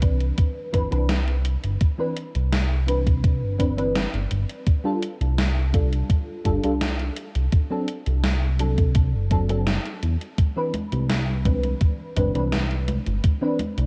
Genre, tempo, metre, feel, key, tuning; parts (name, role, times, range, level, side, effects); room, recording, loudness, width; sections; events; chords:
vaporwave; 84 BPM; 4/4; straight; C major; A4 = 438 Hz
mellow FM electric piano; accompaniment; 0.0-13.6 s; E3 to B4; -30 LUFS; equal; phaser, ensemble chorus, analog delay
chorused synth bass; bass; 0.0-13.9 s; F#1 to E2; -25 LUFS; equal
electronic kick drum; drums; 0.0-13.4 s; -22 LUFS; equal; vintage 12-bit sampler grit
gated 80s digital drum machine; drums; 0.0-13.9 s; congas, hi-hat, snare drum; -31 LUFS; equal; gated reverb, gated reverb snare, vintage 12-bit sampler grit
little or no reverb; cassette tape; -23 LUFS; mono
0.0-13.9 A section
0.0 Cmaj9; 4.7 F69/C; 7.2 D7/C; 10.4 Cmaj9